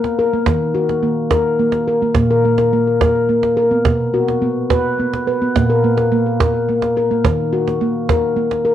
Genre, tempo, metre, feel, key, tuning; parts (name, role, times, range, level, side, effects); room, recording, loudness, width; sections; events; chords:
world meditative, meditative tuned percussion; 71 BPM (dotted quarters); 6/8; straight; A4 = 440 Hz
handpan; arpeggios; 0.0-8.7 s; Bb2 to B4; -14 LUFS; left 1 dB; cassette tape, tape echo
cajon; percussion; 0.0-8.6 s; -18 LUFS; right 4 dB
wet studio reverb, RT60 0.6 s; home recording on cassette; -14 LUFS; side -11 dB against mid
0.0-8.7 A section
0.5 Ebm; 2.2 N.C.; 3.9 B5; 5.6 N.C.; 7.2 Ebm